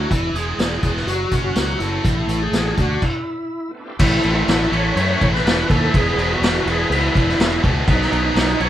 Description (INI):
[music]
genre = classic rock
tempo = 124 BPM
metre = 4/4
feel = straight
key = E mixolydian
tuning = A4 = 441 Hz
[part]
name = overdriven tonewheel organ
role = melody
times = 0.0-8.7 s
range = D#4 to C#5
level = -23 LUFS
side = right 1 dB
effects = chorus vibrato, slow rotary speaker
[part]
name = distorted electric guitar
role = riff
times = 0.0-8.7 s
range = E2 to F#4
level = -22 LUFS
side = equal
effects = overdrive
[part]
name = growling fingered electric bass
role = bass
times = 0.0-8.7 s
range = E1 to F#2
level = -22 LUFS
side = equal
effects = overdrive
[part]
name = vintage drum kit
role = drums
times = 0.1-8.7 s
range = crash cymbal, hi-hat, kick drum, snare drum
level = -19 LUFS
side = equal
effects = none
[part]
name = bright tonewheel organ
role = sustained chords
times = 3.7-8.7 s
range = A3 to D5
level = -33 LUFS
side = right 2 dB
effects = none
[sound]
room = light reverb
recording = band playing live in one room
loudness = -16 LUFS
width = side -12 dB against mid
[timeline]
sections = 0.0-4.0 A section; 4.0-8.7 B section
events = stop 3.0-4.0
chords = 0.1 E; 1.1 F#m; 2.1 A5; 2.8 D; 3.0 N.C.; 4.0 A; 5.9 E; 7.9 Badd9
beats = | 0.12 0.60 1.09 1.57 | 2.06 2.54 3.03 3.52 | 4.00 4.49 4.97 5.46 | 5.94 6.42 6.91 7.39 | 7.88 8.36